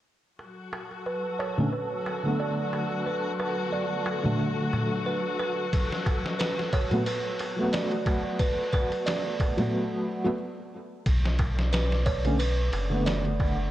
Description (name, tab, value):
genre	trip hop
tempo	90 BPM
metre	4/4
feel	swing 55% on 16ths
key	B minor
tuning	A4 = 440 Hz
part	dark chamber string section	sustained chords	0.4-9.7 s	F#3 to F#4	-34 LUFS	left 3 dB	none
part	darbuka	percussion	0.4-13.7 s	none	-36 LUFS	equal	none
part	wind-like tuned noise texture	texture	0.9-13.7 s	A4 to D5	-39 LUFS	left 1 dB	built-in reverb
part	music box	arpeggios	1.1-13.4 s	B4 to D5	-32 LUFS	right 3 dB	low-pass filter, tape echo
part	felt-muted upright piano	accompaniment	1.6-13.7 s	D3 to C#4	-29 LUFS	equal	tremolo, low-pass filter, tape echo
part	trip hop sampler-style drum kit	drums	5.7-13.6 s	kick drum, ride cymbal, snare drum	-29 LUFS	equal	overdrive
part	warm sub bass	bass	11.1-13.7 s	F#1 to B1	-27 LUFS	equal	none
room	light reverb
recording	worn, warbling old tape, cassette tape, warbly pitch drift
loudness	-25 LUFS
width	side -14 dB against mid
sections	0.4-11.1 A section; 11.1-13.7 B section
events	filter sweep on felt piano 0.4-11.1; filter sweep on music box 0.4-11.1; break 9.7-11.1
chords	0.4 Bm7; 5.7 F#madd11